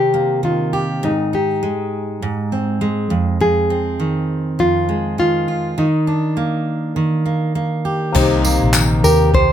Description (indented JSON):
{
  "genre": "acoustic pop",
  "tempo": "101 BPM",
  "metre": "4/4",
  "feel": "swing 60% on 16ths",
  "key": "unclear",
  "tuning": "A4 = 441 Hz",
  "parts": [
    { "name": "nylon-string guitar", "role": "melody", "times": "0.0-9.5 s", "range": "Eb4 to C5", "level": "-19 LUFS", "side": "left 1 dB", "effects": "none" },
    { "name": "fingerpicked steel-string acoustic guitar", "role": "accompaniment", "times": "0.0-9.5 s", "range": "F2 to G4", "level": "-18 LUFS", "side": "right 2 dB", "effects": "none" },
    { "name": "felt-muted upright piano", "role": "accompaniment", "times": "8.1-9.5 s", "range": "Bb3 to C5", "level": "-24 LUFS", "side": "left 6 dB", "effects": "none" },
    { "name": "vintage muted fingered electric bass", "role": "bass", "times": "8.2-9.5 s", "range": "Bb1 to Eb2", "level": "-17 LUFS", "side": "left 1 dB", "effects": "none" },
    { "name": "jazz brush drum kit", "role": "drums", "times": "8.2-9.5 s", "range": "crash cymbal, handclaps, kick drum, tambourine", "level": "-20 LUFS", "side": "left 1 dB", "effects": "none" },
    { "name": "tambourine", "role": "percussion", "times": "8.7-8.9 s", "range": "none", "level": "-21 LUFS", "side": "left 11 dB", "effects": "none" }
  ],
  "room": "little or no reverb",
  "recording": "close, detailed microphones",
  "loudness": "-15 LUFS",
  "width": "side -10 dB against mid",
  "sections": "0.0-8.2 A section; 8.2-9.5 B section",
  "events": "none",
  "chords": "0.0 Cm7; 1.0 Ab; 3.1 Fm7; 5.8 Ebmaj7; 8.2 Cm7",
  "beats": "0.44 | 1.03 1.63 2.22 2.81 | 3.41 4.00 4.60 5.19 | 5.78 6.38 6.97 7.56 | 8.15 8.75 9.34"
}